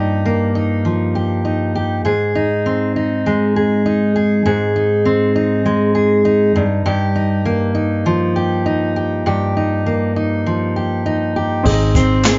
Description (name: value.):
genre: acoustic pop.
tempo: 100 BPM.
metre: 4/4.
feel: swing 55% on 16ths.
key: Ab major.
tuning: A4 = 439 Hz.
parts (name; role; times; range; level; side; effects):
fingerpicked steel-string acoustic guitar; accompaniment; 0.0-12.4 s; G2 to Ab4; -17 LUFS; equal; none.
warm upright piano; accompaniment; 11.6-12.4 s; C4 to Eb5; -22 LUFS; equal; none.
vintage muted fingered electric bass; bass; 11.7-12.4 s; Ab1; -19 LUFS; equal; none.
jazz brush drum kit; drums; 11.7-12.4 s; crash cymbal, kick drum, shaker, snare drum; -19 LUFS; equal; none.
group handclap; percussion; 12.2-12.4 s; none; -27 LUFS; equal; none.
room: light reverb.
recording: nothing above 7.6 kHz.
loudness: -17 LUFS.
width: mono.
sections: 0.0-11.7 A section.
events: none.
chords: 0.0 Ebadd9/G; 2.1 Ab; 6.6 Ebadd9/G; 11.7 Ab.